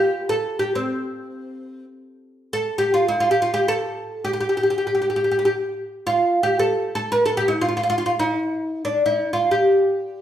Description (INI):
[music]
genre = Arabic maqam ensemble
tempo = free time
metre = none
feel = none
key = unclear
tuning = A4 = 440 Hz
[part]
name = oud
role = solo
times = 0.0-10.2 s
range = C4 to Bb4+50c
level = -19 LUFS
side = equal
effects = none
[sound]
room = wet large studio reverb, RT60 1.1 s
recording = band playing live in one room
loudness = -19 LUFS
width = side -10 dB against mid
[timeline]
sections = 0.0-2.2 A section; 2.2-10.2 A section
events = none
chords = none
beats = free time